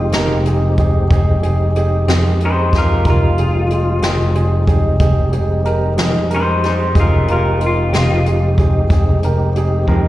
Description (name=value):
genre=slow blues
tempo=62 BPM (dotted quarters)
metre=12/8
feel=straight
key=F minor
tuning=A4 = 439 Hz
part: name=electric guitar through a small old amp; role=melody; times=0.0-8.3 s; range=Eb4 to C5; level=-20 LUFS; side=left 2 dB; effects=spring reverb, slapback echo
part: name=warm upright piano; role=accompaniment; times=0.0-10.1 s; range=Eb4 to Bb4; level=-21 LUFS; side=right 3 dB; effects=slapback echo
part: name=tonewheel organ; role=sustained chords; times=0.0-10.1 s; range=G3 to E5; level=-25 LUFS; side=left 1 dB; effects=slow rotary speaker, chorus vibrato
part: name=fingered electric bass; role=bass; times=0.0-10.1 s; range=F1 to F2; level=-15 LUFS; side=equal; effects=none
part: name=electric guitar through a small old amp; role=accompaniment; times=0.1-10.1 s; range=F2 to C4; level=-24 LUFS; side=left 3 dB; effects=tremolo, slapback echo
part: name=jazz brush drum kit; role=drums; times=0.1-10.0 s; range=hi-hat, kick drum, snare drum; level=-18 LUFS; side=equal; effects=none
room=little or no reverb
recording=live gig heard through the venue's PA, recital hall reverb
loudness=-13 LUFS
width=side -15 dB against mid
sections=0.0-10.1 A section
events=drum fill 9.9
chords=0.0 Fm7